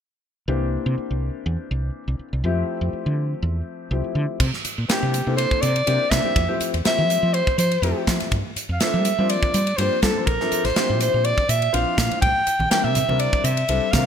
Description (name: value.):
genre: electric jazz fusion.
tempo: 123 BPM.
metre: 4/4.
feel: swing 54% on 16ths.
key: C mixolydian.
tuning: A4 = 439 Hz.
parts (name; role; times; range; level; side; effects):
warm concert grand piano; accompaniment; 0.5-14.0 s; E3 to C5; -27 LUFS; left 5 dB; wide subtle chorus.
woody fretless electric bass; bass; 0.5-14.0 s; A1 to G3; -23 LUFS; equal; none.
modern studio drum kit; drums; 4.4-14.1 s; crash cymbal, hi-hat, kick drum, ride cymbal, snare drum; -24 LUFS; right 1 dB; gated reverb.
breathy soprano saxophone; melody; 4.9-14.1 s; G4 to G5; -22 LUFS; equal; none.
congas; percussion; 12.2-14.1 s; none; -30 LUFS; right 3 dB; none.
room: moderate plate reverb, RT60 1.1 s, studio ambience.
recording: bright 1980s-style digital production.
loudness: -19 LUFS.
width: side -8 dB against mid.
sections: 0.5-4.4 A section; 4.4-14.1 B section.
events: none.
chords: 0.5 C9; 2.4 Fmaj9; 4.4 C9; 6.4 Fmaj9; 8.3 Gm11; 10.3 Bbmaj9#11; 12.2 C9.